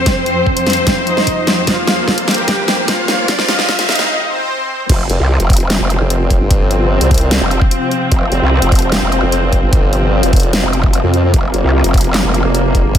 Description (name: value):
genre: heavy wobble dubstep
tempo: 149 BPM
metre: 4/4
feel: half-time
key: unclear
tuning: A4 = 444 Hz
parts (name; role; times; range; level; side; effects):
- soft supersaw; melody; 0.0-4.8 s; C4 to G5; -19 LUFS; equal; low-pass filter, ping-pong delay
- warm chamber string section; sustained chords; 0.0-13.0 s; F2 to C5; -18 LUFS; equal; sidechain pumping
- riser; sound effects; 0.5-4.1 s; none; -24 LUFS; equal; none
- deep dark ambient pad; texture; 0.6-13.0 s; C4 to G5; -24 LUFS; left 3 dB; chorus, built-in reverb, sidechain pumping
- dubstep drum kit; drums; 0.1-13.0 s; crash cymbal, handclaps, hi-hat, snare drum; -17 LUFS; equal; none
- electronic kick drum; drums; 0.1-13.0 s; none; -13 LUFS; equal; none
- growl bass; bass; 4.9-12.4 s; F1 to C2; -15 LUFS; equal; chorus, overdrive
- formant-sweep wobble bass; bass; 5.1-13.0 s; F1 to F2; -14 LUFS; equal; chorus, overdrive
room: moderate lush hall reverb, RT60 1.7 s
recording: dreamy mix soaked in reverb, high-pass filter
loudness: -11 LUFS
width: side -9 dB against mid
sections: 0.0-4.9 A section; 4.9-13.0 B section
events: build-up 0.0-4.9; drum fill 0.0-4.1; filter sweep on supersaw synth 0.0-4.9; filter sweep 0.0-4.9; riser 0.5-4.1; break 4.1-4.9; drop 4.9-13.0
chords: 0.0 F5